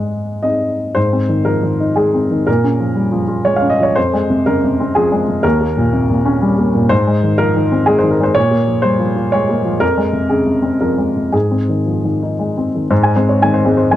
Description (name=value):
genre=neoclassical minimalist piano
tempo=113-125 BPM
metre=3/4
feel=rubato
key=Ab major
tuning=A4 = 441 Hz
part: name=warm upright piano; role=solo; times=0.0-14.0 s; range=Eb2 to Ab5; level=-12 LUFS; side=equal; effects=none
room=light reverb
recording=dark, warm production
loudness=-13 LUFS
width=side -13 dB against mid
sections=1.0-12.9 A section; 12.9-14.0 B section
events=none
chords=0.0 Ab; 2.5 Bbm7; 4.0 Fm; 5.4 Eb7; 6.9 Ab; 8.4 Bbm7; 9.8 Fm; 11.3 Ab